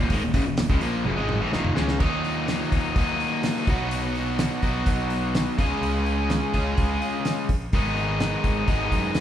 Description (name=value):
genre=classic rock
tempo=126 BPM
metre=4/4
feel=straight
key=Eb minor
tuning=A4 = 440 Hz
part: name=crunchy overdriven guitar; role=riff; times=0.0-9.2 s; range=Eb2 to Ab4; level=-24 LUFS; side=left 1 dB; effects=spring reverb
part: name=fuzz fingered electric bass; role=bass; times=0.0-9.2 s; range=Eb1 to Gb2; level=-30 LUFS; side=equal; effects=overdrive
part: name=damped 70s drum kit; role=drums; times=0.1-9.2 s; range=crash cymbal, hi-hat, kick drum, snare drum, toms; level=-26 LUFS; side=equal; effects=none
room=moderate large studio reverb, RT60 0.8 s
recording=band playing live in one room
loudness=-22 LUFS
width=side -10 dB against mid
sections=0.0-2.0 A section; 2.0-9.2 B section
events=drum fill 1.1-2.0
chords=0.0 Ebm; 3.7 B; 5.6 Db; 7.7 Abm